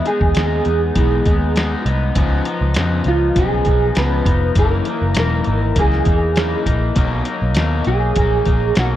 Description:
indie pop, bedroom pop; 100 BPM; 4/4; straight; C# dorian; A4 = 438 Hz
electric guitar through a small old amp; melody; 0.0-8.9 s; E#4 to B4; -20 LUFS; right 2 dB; ensemble chorus, tape echo
electric guitar at the edge of break-up; accompaniment; 0.0-9.0 s; F#2 to D#4; -21 LUFS; left 4 dB; lush chorus, warbly pitch drift
lo-fi sampler-style drum kit; drums; 0.1-8.9 s; hi-hat, kick drum, snare drum; -19 LUFS; equal
vintage muted picked electric bass; bass; 0.2-9.0 s; E1 to E#2; -18 LUFS; equal
little or no reverb; dry, close 1970s-style studio recording; -14 LUFS; side -12 dB against mid
0.0-9.0 A section
0.0 Emaj7; 2.2 C#9; 4.6 F#13; 7.0 Bmaj7
0.36 0.96 1.56 | 2.16 2.76 3.36 3.96 | 4.56 5.16 5.76 6.37 | 6.96 7.57 8.17 8.77

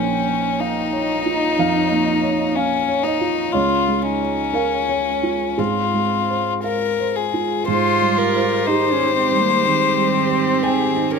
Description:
neoclassical piano and strings; 56-62 BPM; 4/4; rubato; Ab major; A4 = 440 Hz
rich violin; melody; 0.0-11.2 s; Db4 to C5; -20 LUFS; left 8 dB
dark cello; second line; 0.0-11.2 s; Bb3 to F4; -24 LUFS; right 6 dB
felt-muted upright piano; accompaniment; 0.0-11.2 s; Bb1 to G5; -22 LUFS; right 5 dB
glassy FM pad; sustained chords; 0.0-11.2 s; Eb3 to Db5; -32 LUFS; left 2 dB; ensemble chorus, built-in reverb
rich viola; accompaniment; 7.7-11.2 s; G4; -30 LUFS; right 4 dB
light reverb; close, detailed microphones; -16 LUFS; side -5 dB against mid
0.0-7.7 A section; 7.7-11.2 B section
0.0 Bbm; 3.5 Db; 5.6 Ab6; 7.7 Abmaj7
0.61 1.58 2.56 | 3.54 4.54 5.58 6.63 | 7.67 8.67 9.65 10.63

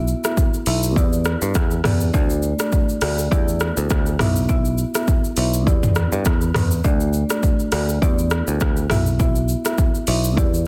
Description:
afrobeats; 102 BPM; 4/4; swing 55% on 16ths; E minor; A4 = 440 Hz
picked electric bass; bass; 0.0-10.7 s; B1 to G2; -23 LUFS; equal
deep house drum kit; drums; 0.1-10.7 s; hi-hat, kick drum, rim click, shaker, toms; -22 LUFS; equal; overdrive
marimba with medium mallets; accompaniment; 0.2-10.7 s; A3 to E5; -27 LUFS; equal
little or no reverb; dense, heavily limited modern master; -19 LUFS; mono
0.0-10.7 A section
0.0 Bsus4; 1.0 Em7; 2.1 D; 3.3 Em7; 4.2 Bsus4; 5.7 Em7; 6.8 D; 8.0 Em7; 8.9 Bsus4
0.38 0.96 1.55 | 2.14 2.73 3.32 3.90 | 4.49 5.08 5.67 6.26 | 6.85 7.43 8.02 8.61 | 9.20 9.79 10.38

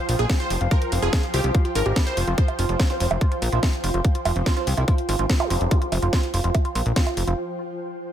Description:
psychedelic trance; 144 BPM; 4/4; straight; A4 = 440 Hz
supersaw stab; melody; 0.0-2.3 s; G4 to C5; -28 LUFS; equal; phaser, sidechain pumping, digital delay
bubbling stepped-filter texture; sustained chords; 0.0-7.4 s; F3; -33 LUFS; left 1 dB; chorus, built-in reverb, sidechain pumping
ethereal airy pad; texture; 0.0-7.4 s; F4 to G5; -34 LUFS; left 1 dB; ensemble chorus, built-in reverb, sidechain pumping
woody wave-folded pluck; riff; 0.1-7.3 s; E4 to F5; -30 LUFS; moving between equal and right 8 dB; chorus, auto-pan, sidechain pumping, digital delay
plucky analog bass; bass; 0.1-7.3 s; F1 to C2; -22 LUFS; equal
drum and bass drum kit; drums; 0.1-7.4 s; bongos, hi-hat, snare drum; -28 LUFS; right 2 dB
electronic kick drum; drums; 0.3-7.0 s; -20 LUFS; equal
formant-sweep wobble bass; second line; 2.9-4.9 s; C4 to E4; -34 LUFS; right 3 dB; wide subtle chorus, sidechain pumping, high-pass filter, digital delay
zap; sound effects; 5.4-5.5 s; -31 LUFS; equal
digital ambience; -20 LUFS; side -10 dB against mid
0.0-8.1 A section
break 7.4-8.1
0.0 F5
0.30 | 0.71 1.13 1.55 1.96 | 2.38 2.80 3.21 3.63 | 4.05 4.46 4.88 5.30 | 5.71 6.13 6.55 6.96 | 7.38

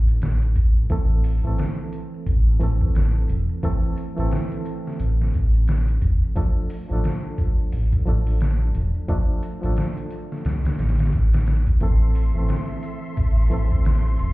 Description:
trip hop; 88 BPM; 4/4; swing 60% on 16ths; A minor; A4 = 443 Hz
reed electric piano; accompaniment; 0.0-14.3 s; E3 to A4; -29 LUFS; right 1 dB; tremolo, low-pass filter, tape echo
round analog bass; bass; 0.0-14.3 s; E1 to C2; -19 LUFS; equal
trip hop sampler-style drum kit; drums; 0.1-14.3 s; hi-hat, kick drum, snare drum; -23 LUFS; equal
maracas; percussion; 0.1-14.3 s; -62 LUFS; left 2 dB
rich studio string section; sustained chords; 11.8-14.3 s; A4 to C6; -37 LUFS; left 2 dB
little or no reverb; heard muffled through a wall, club reverb, EQ; -19 LUFS; side -19 dB against mid
0.0-14.3 A section
0.0 Dm; 0.9 Am; 6.4 Dm; 11.8 Am
0.22 | 0.90 1.58 2.26 2.95 | 3.63 4.31 4.99 5.67 | 6.36 7.04 7.72 8.40 | 9.08 9.76 10.45 11.13 | 11.81 12.49 13.17 13.86

